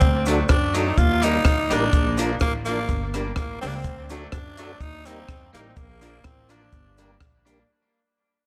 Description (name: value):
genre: ska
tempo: 125 BPM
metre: 4/4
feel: swing 53% on 8ths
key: G minor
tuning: A4 = 440 Hz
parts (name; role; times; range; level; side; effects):
- growling tenor saxophone; melody; 0.0-7.5 s; Bb3 to F4; -28 LUFS; equal; tape echo
- upright bass; bass; 0.0-7.6 s; G1 to F#2; -29 LUFS; equal; none
- compact cocktail drum kit; drums; 0.0-7.6 s; hi-hat, kick drum, rim click; -25 LUFS; equal; none
- cabasa; percussion; 0.0-7.6 s; none; -45 LUFS; equal; none
- electric guitar at the edge of break-up; accompaniment; 0.3-7.6 s; F3 to Eb4; -33 LUFS; equal; tube saturation, tape echo
- mellow tonewheel organ; stabs; 0.3-7.6 s; D4 to Bb4; -32 LUFS; equal; chorus vibrato, slow rotary speaker
room: light reverb, small room ambience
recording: none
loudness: -22 LUFS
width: mono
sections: 0.0-7.7 A section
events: fade-out 0.0-7.7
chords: 0.0 D; 1.0 Eb; 1.9 Bb; 2.9 Gm; 3.9 D; 4.8 Eb; 5.8 Bb; 6.7 Gm